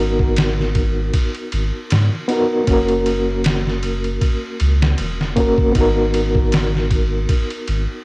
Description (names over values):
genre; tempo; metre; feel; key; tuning
trip hop; 78 BPM; 4/4; swing 55% on 16ths; G# minor; A4 = 439 Hz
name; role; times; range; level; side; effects
reed electric piano; accompaniment; 0.0-8.0 s; A#3 to A#4; -20 LUFS; equal; tremolo, cassette tape, tape echo
soft dub sub bass; bass; 0.0-7.9 s; E1 to G#2; -19 LUFS; equal; none
trip hop sampler-style drum kit; drums; 0.2-7.9 s; kick drum, ride cymbal, snare drum; -20 LUFS; equal; cassette tape
room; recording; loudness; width
light reverb; home recording on cassette; -15 LUFS; side -27 dB against mid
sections
0.0-8.0 A section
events
none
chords
0.0 G#m7; 2.7 F#; 5.8 G#m7